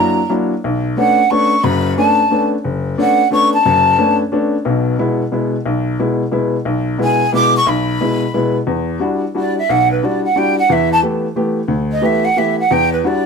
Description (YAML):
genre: jazz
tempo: 179 BPM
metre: 3/4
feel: swing 63% on 8ths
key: B dorian, E minor from 8.7 s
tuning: A4 = 439 Hz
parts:
  - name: breathy mellow jazz flute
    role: melody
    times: 0.0-4.2, 7.0-13.3 s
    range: B4 to D6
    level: -14 LUFS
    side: right 1 dB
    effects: none
  - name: warm upright piano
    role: accompaniment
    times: 0.0-13.3 s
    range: F#1 to G4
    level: -16 LUFS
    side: left 2 dB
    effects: none
room: moderate studio reverb, RT60 0.8 s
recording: close, detailed microphones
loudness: -13 LUFS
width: side -5 dB against mid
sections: 0.6-8.7 A section; 8.7-13.3 B section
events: flute solo 8.7-13.3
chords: 0.0 F#7b13; 0.6 Bm9; 4.7 E/B; 8.7 Em9; 10.7 Gadd9/E; 12.7 Em9